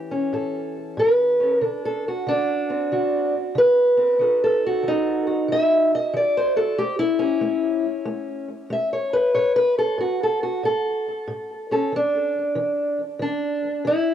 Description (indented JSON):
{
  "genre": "acoustic country blues, solo or duo",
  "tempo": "93 BPM",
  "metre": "4/4",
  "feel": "swing 65% on 8ths",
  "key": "A mixolydian",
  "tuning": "A4 = 437 Hz",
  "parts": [
    { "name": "fingerpicked steel-string acoustic guitar", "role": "solo", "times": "0.0-14.1 s", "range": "A2 to E5", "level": "-19 LUFS", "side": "equal", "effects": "analog delay" }
  ],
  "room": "light reverb, small room ambience",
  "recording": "home recording on cassette",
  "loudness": "-19 LUFS",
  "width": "side -10 dB against mid",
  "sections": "0.0-14.1 A section",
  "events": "none",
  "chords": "0.0 A7; 1.6 D7; 4.2 D#dim; 6.8 A; 11.9 E7(no3)"
}